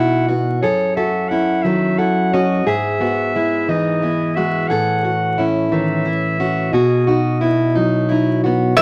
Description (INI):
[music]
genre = acoustic folk duo or small band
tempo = 59 BPM (dotted quarters)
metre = 6/8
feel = straight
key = unclear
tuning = A4 = 438 Hz
[part]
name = clear clarinet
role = second line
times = 0.0-8.8 s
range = G#4 to F#5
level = -24 LUFS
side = equal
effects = none
[part]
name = nylon-string guitar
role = accompaniment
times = 0.0-8.8 s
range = E2 to A4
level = -20 LUFS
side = equal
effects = none
[part]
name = picked plugged-in steel-string acoustic guitar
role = arpeggios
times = 0.0-8.8 s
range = D#3 to G#4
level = -23 LUFS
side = equal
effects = none
[part]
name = mandolin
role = melody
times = 8.8 s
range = E5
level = -11 LUFS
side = equal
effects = none
[part]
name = warm chamber string section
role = sustained chords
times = 8.8 s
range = E2 to G#3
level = -34 LUFS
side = equal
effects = none
[sound]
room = moderate small room reverb, RT60 0.5 s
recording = vinyl crackle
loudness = -17 LUFS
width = mono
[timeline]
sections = 0.0-8.8 A section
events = clarinet solo 0.0-8.8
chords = 0.0 B; 0.6 F#m; 2.7 E/G#; 4.7 A; 6.7 B